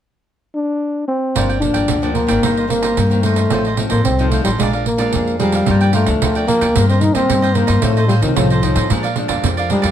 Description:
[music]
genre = samba and choro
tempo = 111 BPM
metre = 4/4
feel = straight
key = G minor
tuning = A4 = 440 Hz
[part]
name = mellow trombone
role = melody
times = 0.6-9.9 s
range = Eb3 to Eb4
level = -18 LUFS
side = equal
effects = none
[part]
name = cavaquinho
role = accompaniment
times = 1.4-9.9 s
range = Eb4 to G5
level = -23 LUFS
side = right 3 dB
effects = none
[part]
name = nylon-string guitar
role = accompaniment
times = 1.4-9.9 s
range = F2 to Eb4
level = -22 LUFS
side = left 3 dB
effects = none
[part]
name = upright bass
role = bass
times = 1.4-9.9 s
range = G1 to Bb2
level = -18 LUFS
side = left 1 dB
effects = none
[part]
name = pandeiro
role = percussion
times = 1.4-9.9 s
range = none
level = -22 LUFS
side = right 9 dB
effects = none
[sound]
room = light reverb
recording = none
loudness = -14 LUFS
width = side -10 dB against mid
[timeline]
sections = 0.0-1.4 A section; 1.4-5.7 B section; 5.7-9.9 C section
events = none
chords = 0.0 N.C.; 1.4 Gm7; 2.4 Cm7/G; 3.5 F7/A; 4.6 Bb7; 5.7 Gm7; 6.8 Cm7/G; 7.8 F7; 8.9 Bb7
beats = 0.27 0.81 | 1.35 1.90 2.44 2.98 | 3.52 4.06 4.60 5.14 | 5.68 6.21 6.75 7.29 | 7.83 8.37 8.91 9.45

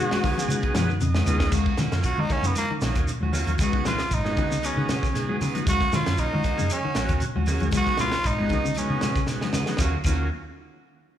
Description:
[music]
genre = afrobeat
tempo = 116 BPM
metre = 4/4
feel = swing 54% on 16ths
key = Eb minor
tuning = A4 = 435 Hz
[part]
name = bright trombone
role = melody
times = 0.0-1.0 s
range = Gb4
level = -29 LUFS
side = left 2 dB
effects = slapback echo
[part]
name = combo organ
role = accompaniment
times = 0.0-10.3 s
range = Gb3 to Ab5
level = -32 LUFS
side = right 1 dB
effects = slapback echo
[part]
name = clean electric guitar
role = arpeggios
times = 0.0-10.2 s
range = Db3 to Ab3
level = -31 LUFS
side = left 7 dB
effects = spring reverb, slapback echo
[part]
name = shekere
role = percussion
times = 0.0-10.2 s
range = none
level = -35 LUFS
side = right 3 dB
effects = none
[part]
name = electric guitar at the edge of break-up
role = stabs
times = 0.1-10.3 s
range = Gb3 to Ab4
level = -34 LUFS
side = right 7 dB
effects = slapback echo
[part]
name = tight funk drum kit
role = drums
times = 0.1-10.2 s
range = crash cymbal, hi-hat, kick drum, snare drum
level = -28 LUFS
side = equal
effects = none
[part]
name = congas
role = percussion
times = 0.1-10.2 s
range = none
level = -33 LUFS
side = left 1 dB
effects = none
[part]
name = hollow-body short-scale fingered electric bass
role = bass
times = 0.5-10.3 s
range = Ab1 to Eb3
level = -26 LUFS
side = equal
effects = none
[part]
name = claves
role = percussion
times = 0.5-10.2 s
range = none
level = -44 LUFS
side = left 4 dB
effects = none
[part]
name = raspy tenor saxophone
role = melody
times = 2.1-9.3 s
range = Bb3 to Gb4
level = -28 LUFS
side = right 2 dB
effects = slapback echo
[sound]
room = light reverb, small room ambience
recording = live gig heard through the venue's PA, club reverb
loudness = -22 LUFS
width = side -10 dB against mid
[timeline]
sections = 0.0-1.5 A section; 1.5-9.8 B section; 9.8-11.2 C section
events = transistor combo organ fill 0.0-1.5; tenor saxophone solo 1.5-9.8; drum fill 9.3-9.8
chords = 0.0 Db7sus4; 1.5 Ebm7; 3.6 Db7sus4; 5.7 Ebm7; 7.7 Db7sus4; 9.8 Ebm7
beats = 0.50 1.02 | 1.53 2.05 2.57 3.08 | 3.60 4.12 4.64 5.15 | 5.67 6.19 6.70 7.22 | 7.73 8.25 8.76 9.28 | 9.79

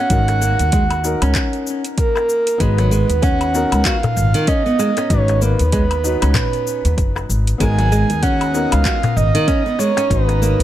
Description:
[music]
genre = organic downtempo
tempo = 96 BPM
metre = 4/4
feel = swing 58% on 16ths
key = G# dorian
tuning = A4 = 440 Hz
[part]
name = breathy flute-like synth lead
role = melody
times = 0.0-10.6 s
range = A#4 to G#5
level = -20 LUFS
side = right 3 dB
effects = chorus, ping-pong delay
[part]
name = felt-muted upright piano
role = accompaniment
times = 0.0-10.6 s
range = B3 to B4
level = -27 LUFS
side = left 4 dB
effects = sidechain pumping, ping-pong delay
[part]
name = nylon-string guitar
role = arpeggios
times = 0.0-10.6 s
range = D#3 to F#4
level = -22 LUFS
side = right 1 dB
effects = ping-pong delay
[part]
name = upright bass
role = bass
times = 0.1-10.6 s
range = F#1 to D#2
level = -17 LUFS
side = equal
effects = none
[part]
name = deep house drum kit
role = drums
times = 0.1-10.6 s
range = cabasa, handclaps, hi-hat, woodblock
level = -25 LUFS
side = left 2 dB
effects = overdrive
[part]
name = electronic kick drum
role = drums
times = 0.1-10.2 s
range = none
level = -20 LUFS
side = equal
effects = overdrive
[part]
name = darbuka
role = percussion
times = 0.3-10.4 s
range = none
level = -24 LUFS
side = left 3 dB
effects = none
[part]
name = drifting glass-harmonics texture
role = texture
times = 8.2-10.6 s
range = D#4 to D#5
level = -30 LUFS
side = right 2 dB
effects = chorus, built-in reverb
[sound]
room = light reverb, small room ambience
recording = dark, warm production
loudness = -14 LUFS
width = side -12 dB against mid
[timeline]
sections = 0.0-10.6 A section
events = none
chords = 0.0 G#m7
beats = | 0.10 0.73 1.35 1.98 | 2.60 3.23 3.85 4.48 | 5.10 5.73 6.35 6.98 | 7.60 8.23 8.85 9.48 | 10.10

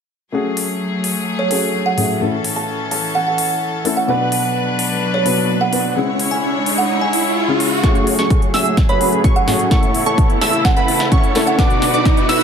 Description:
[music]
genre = EDM, festival progressive house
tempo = 128 BPM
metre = 4/4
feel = straight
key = F# minor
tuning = A4 = 440 Hz
[part]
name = dark baby grand piano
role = accompaniment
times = 0.3-12.4 s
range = A2 to B4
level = -22 LUFS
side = left 4 dB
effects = sidechain pumping, tape echo
[part]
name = clear chamber string section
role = sustained chords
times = 0.3-12.4 s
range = C#3 to C#5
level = -22 LUFS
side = left 2 dB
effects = sidechain pumping, low-pass filter
[part]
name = big-room dance drum kit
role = drums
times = 0.6-12.4 s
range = hi-hat, snare drum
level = -23 LUFS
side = left 2 dB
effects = overdrive, high-pass filter on hats, high-pass filter on snare
[part]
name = kalimba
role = melody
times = 1.4-11.7 s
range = C#5 to A5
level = -21 LUFS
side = right 4 dB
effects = tape echo
[part]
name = riser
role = sound effects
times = 4.9-12.4 s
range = none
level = -23 LUFS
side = right 2 dB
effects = none
[part]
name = plucky unison lead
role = arpeggios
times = 7.8-12.4 s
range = B5 to E6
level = -21 LUFS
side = right 1 dB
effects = sidechain pumping, tape echo
[part]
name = dense compressed supersaw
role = riff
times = 7.8-12.4 s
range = A3 to E5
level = -21 LUFS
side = right 1 dB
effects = sidechain pumping, low-pass filter, tape echo
[part]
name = fat analog bass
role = bass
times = 7.8-12.4 s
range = none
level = barely audible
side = none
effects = none
[part]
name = electronic kick drum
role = drums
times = 7.8-12.1 s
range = none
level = -15 LUFS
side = equal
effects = none
[sound]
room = moderate lush hall reverb, RT60 1.8 s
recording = none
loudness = -14 LUFS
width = side -7 dB against mid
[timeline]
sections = 0.3-7.8 A section; 7.8-12.4 B section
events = riser 4.9-7.8, 7.8-12.4; build-up 7.8-12.4; drum fill 7.8-12.4; filter sweep on supersaw synth 7.8-12.4; filter sweep on string section 7.8-12.4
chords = 0.3 F#madd9; 2.2 A; 4.1 Bm; 6.0 C#m; 7.8 F#madd9; 9.7 A; 11.6 Bm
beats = | 0.34 0.81 1.27 1.74 | 2.21 2.68 3.15 3.62 | 4.09 4.55 5.02 5.49 | 5.96 6.43 6.90 7.37 | 7.84 8.30 8.77 9.24 | 9.71 10.18 10.65 11.12 | 11.59 12.05

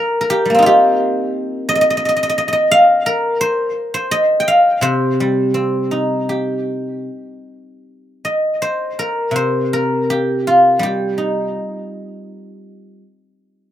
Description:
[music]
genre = chinese traditional, Chinese solo plucked strings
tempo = 76-87 BPM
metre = 4/4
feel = rubato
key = C yu mode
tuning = A4 = 440 Hz
[part]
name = guzheng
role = solo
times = 0.0-13.2 s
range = C3 to G5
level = -14 LUFS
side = equal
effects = slapback echo
[sound]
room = little or no reverb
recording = recorded outdoors, with no room sound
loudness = -14 LUFS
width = side -11 dB against mid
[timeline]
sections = 0.0-7.8 A section; 7.8-13.7 B section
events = none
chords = none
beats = 0.63 1.32 | 2.01 2.71 3.41 4.12 | 4.83 5.55 6.29 7.07 | 7.84 8.59 9.33 10.08 | 10.82 11.56 12.29 13.02

